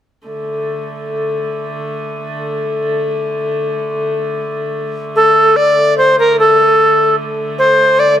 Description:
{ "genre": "medieval", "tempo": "free time", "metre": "none", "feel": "none", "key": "unclear", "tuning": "A4 = 440 Hz", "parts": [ { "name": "rich hurdy-gurdy", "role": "drone", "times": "0.3-8.2 s", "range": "D3 to A3", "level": "-19 LUFS", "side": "left 1 dB", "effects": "none" }, { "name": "bright reedy bass recorder", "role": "melody", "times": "5.2-8.2 s", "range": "A4 to D5", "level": "-9 LUFS", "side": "equal", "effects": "none" } ], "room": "moderate recital hall reverb, RT60 1.3 s", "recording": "none", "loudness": "-12 LUFS", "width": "side -10 dB against mid", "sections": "0.3-5.1 A section; 5.1-8.2 B section", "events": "none", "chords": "none" }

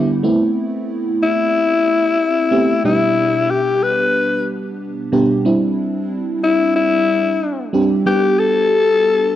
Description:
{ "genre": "pop", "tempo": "92 BPM", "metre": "4/4", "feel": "straight", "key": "C major", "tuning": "A4 = 439 Hz", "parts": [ { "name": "FM electric piano with soft pad layer", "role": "accompaniment", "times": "0.0-9.4 s", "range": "B2 to G4", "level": "-18 LUFS", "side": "right 2 dB", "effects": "chorus, cassette tape" }, { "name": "raspy alto saxophone", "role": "melody", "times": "1.2-9.4 s", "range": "E4 to B4", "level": "-15 LUFS", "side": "left 4 dB", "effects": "cassette tape, analog delay" } ], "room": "moderate spring reverb, RT60 1.2 s, studio ambience", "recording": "home recording on cassette", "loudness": "-14 LUFS", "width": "side -12 dB against mid", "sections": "0.0-9.4 A section", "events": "none", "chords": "0.2 Amadd9; 2.8 G/B; 5.5 Cadd9; 8.1 G" }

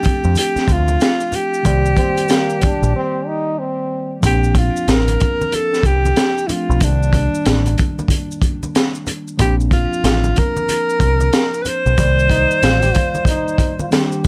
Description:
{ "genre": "hip hop, jazz-hop", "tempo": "93 BPM", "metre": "4/4", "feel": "swing 63% on 16ths", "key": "unclear", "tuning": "A4 = 440 Hz", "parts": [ { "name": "mellow alto saxophone", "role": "melody", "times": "0.0-13.9 s", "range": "D4 to C5", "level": "-22 LUFS", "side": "equal", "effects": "tape echo" }, { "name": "mellow tine electric piano", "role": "accompaniment", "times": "0.0-14.3 s", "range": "Eb3 to D5", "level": "-27 LUFS", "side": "equal", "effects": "none" }, { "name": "crunchy breakbeat drum kit", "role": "drums", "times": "0.0-14.3 s", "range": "hi-hat, kick drum, snare drum", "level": "-20 LUFS", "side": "equal", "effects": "none" }, { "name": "congas and maracas", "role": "percussion", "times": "0.0-14.3 s", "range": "none", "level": "-31 LUFS", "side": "equal", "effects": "none" }, { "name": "deep dub picked electric bass", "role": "bass", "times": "0.2-12.9 s", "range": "A1 to F2", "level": "-19 LUFS", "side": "equal", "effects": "none" }, { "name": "warm trombone", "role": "second line", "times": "2.0-4.2, 12.3-14.3 s", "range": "Bb3 to G4", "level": "-25 LUFS", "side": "equal", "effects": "none" } ], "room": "light reverb", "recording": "none", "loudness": "-17 LUFS", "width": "mono", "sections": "0.0-4.2 A section; 4.2-14.3 B section", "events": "break 2.9-4.2", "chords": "0.0 Bbmaj9 (rootless); 1.7 Cm9; 4.2 Bbmaj9; 6.8 Cm9; 9.4 Bbadd9; 12.0 Cm9" }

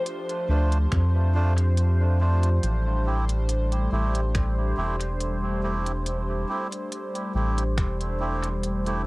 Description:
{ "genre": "ambient dub", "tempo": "70 BPM", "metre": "4/4", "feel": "swing 54% on 16ths", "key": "A minor", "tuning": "A4 = 440 Hz", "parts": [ { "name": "warm analog pad", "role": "sustained chords", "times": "0.0-9.1 s", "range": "F3 to C5", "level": "-31 LUFS", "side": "equal", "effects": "chorus, cassette tape, plate reverb" }, { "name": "organic electronic drum kit", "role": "drums", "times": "0.1-9.0 s", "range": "finger snaps, hi-hat", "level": "-38 LUFS", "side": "equal", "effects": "dub echo" }, { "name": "melodica", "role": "stabs", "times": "0.5-9.0 s", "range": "A3 to C5", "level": "-32 LUFS", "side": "right 2 dB", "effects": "cassette tape, dub echo, plate reverb" }, { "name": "round analog bass", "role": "bass", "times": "0.5-9.1 s", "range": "E1 to F2", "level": "-23 LUFS", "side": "equal", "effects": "tube saturation" }, { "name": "electronic kick drum", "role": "drums", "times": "0.9-8.0 s", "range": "none", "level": "-26 LUFS", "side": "equal", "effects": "none" } ], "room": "little or no reverb", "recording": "home recording on cassette", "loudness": "-22 LUFS", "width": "side -22 dB against mid", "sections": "0.0-9.1 A section", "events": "filter sweep on melodica 0.0-9.1", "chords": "0.0 Dm7; 2.6 Am7" }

